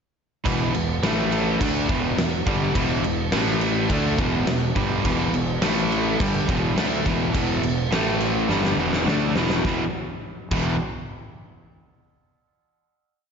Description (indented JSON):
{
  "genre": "hard rock",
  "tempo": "104 BPM",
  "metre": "4/4",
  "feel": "straight",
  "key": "E minor",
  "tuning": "A4 = 440 Hz",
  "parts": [
    { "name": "crunchy overdriven guitar", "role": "riff", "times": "0.4-10.8 s", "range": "E2 to D4", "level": "-25 LUFS", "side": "right 9 dB", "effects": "slapback echo" },
    { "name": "crunchy overdriven guitar", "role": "riff", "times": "0.5-10.8 s", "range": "E2 to D4", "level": "-26 LUFS", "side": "left 8 dB", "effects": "slapback echo" },
    { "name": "fuzz fingered electric bass", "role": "bass", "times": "0.5-10.8 s", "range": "E1 to D2", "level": "-28 LUFS", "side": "equal", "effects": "overdrive" },
    { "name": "huge arena drum kit", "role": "drums", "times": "0.5-10.6 s", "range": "crash cymbal, kick drum, snare drum", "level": "-26 LUFS", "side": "equal", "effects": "none" }
  ],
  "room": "moderate recital hall reverb, RT60 1.7 s, small room ambience",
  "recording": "big arena sound, nothing above 7.5 kHz",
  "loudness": "-20 LUFS",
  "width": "side -6 dB against mid",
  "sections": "0.4-9.6 riff; 9.6-12.0 final chord",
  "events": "drum fill 8.5-9.6",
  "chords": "0.4 E5; 1.0 A5; 1.6 Em; 3.3 A5; 3.9 Em; 5.6 A5; 6.2 Em; 7.9 A5; 8.5 Em; 9.6 E5",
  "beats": "| 0.45 1.02 1.60 2.17 | 2.75 3.32 3.90 4.47 | 5.04 5.62 6.19 6.77 | 7.34 7.92 8.49 9.07 | 9.65 10.22"
}